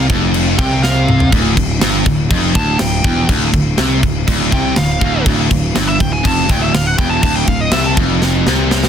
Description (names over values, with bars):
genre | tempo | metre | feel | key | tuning
heavy metal | 122 BPM | 4/4 | straight | D minor | A4 = 442 Hz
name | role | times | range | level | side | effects
nasal lead guitar with a parked wah | melody | 0.0-7.9 s | Eb5 to A5 | -20 LUFS | right 1 dB | overdrive
distorted electric guitar | riff | 0.0-8.9 s | D2 to C3 | -16 LUFS | equal | overdrive
fuzz picked electric bass | bass | 0.0-8.9 s | D1 to C2 | -18 LUFS | equal | overdrive
tight metal drum kit | drums | 0.1-8.9 s | crash cymbal, kick drum, snare drum, toms | -16 LUFS | equal | none
room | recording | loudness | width
small room ambience | dense, heavily limited modern master | -11 LUFS | side -8 dB against mid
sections
0.0-8.9 A section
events
lead electric guitar solo 0.0-8.9; drum fill 0.8-1.3, 8.2-8.9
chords
0.0 Dm